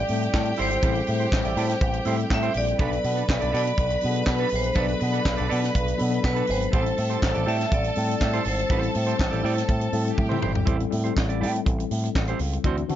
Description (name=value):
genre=disco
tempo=122 BPM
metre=4/4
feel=straight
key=A dorian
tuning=A4 = 441 Hz
part: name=vibraphone with medium hard mallets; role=melody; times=0.0-9.9 s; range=B4 to E5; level=-28 LUFS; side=equal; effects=plate reverb
part: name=clear studio string section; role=second line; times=0.0-10.7 s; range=G4 to B5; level=-31 LUFS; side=right 1 dB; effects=plate reverb
part: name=mellow tine electric piano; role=accompaniment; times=0.0-13.0 s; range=E3 to A4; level=-30 LUFS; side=left 5 dB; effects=medium stereo tremolo, plate reverb
part: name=picked electric bass with an envelope filter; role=bass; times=0.1-13.0 s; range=G#1 to D3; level=-26 LUFS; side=equal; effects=none
part: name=tight funk drum kit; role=drums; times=0.1-13.0 s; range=handclaps, hi-hat, kick drum, snare drum, toms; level=-27 LUFS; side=equal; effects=none
part: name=clean electric guitar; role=accompaniment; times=0.2-12.9 s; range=D4 to D5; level=-32 LUFS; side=right 8 dB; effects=plate reverb
room=light reverb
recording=nothing above 7.5 kHz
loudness=-21 LUFS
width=side -11 dB against mid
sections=0.0-10.7 A section; 10.7-13.0 B section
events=drum fill 10.2-10.7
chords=0.0 Am7; 2.8 Bm7; 6.7 Am7